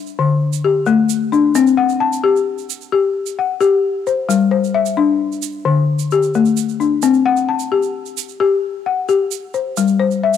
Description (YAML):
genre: west african traditional, West African string and xylophone music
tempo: 88 BPM (dotted quarters)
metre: 12/8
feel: straight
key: C lydian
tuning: A4 = 440 Hz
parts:
  - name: tube shaker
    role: percussion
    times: 0.1-10.4 s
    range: none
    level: -27 LUFS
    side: right 18 dB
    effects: none
  - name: balafon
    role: arpeggios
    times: 0.2-10.4 s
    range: D3 to A5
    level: -14 LUFS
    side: left 6 dB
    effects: none
room: light reverb, small room ambience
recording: home recording on cassette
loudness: -14 LUFS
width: side -8 dB against mid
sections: 0.0-10.4 A section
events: none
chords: 0.2 D5; 1.6 C5; 4.3 G5; 5.7 D5; 7.0 C5; 9.8 G5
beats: 0.18 0.87 | 1.55 2.24 2.92 3.61 | 4.29 4.97 5.66 6.34 | 7.03 7.71 8.40 9.08 | 9.77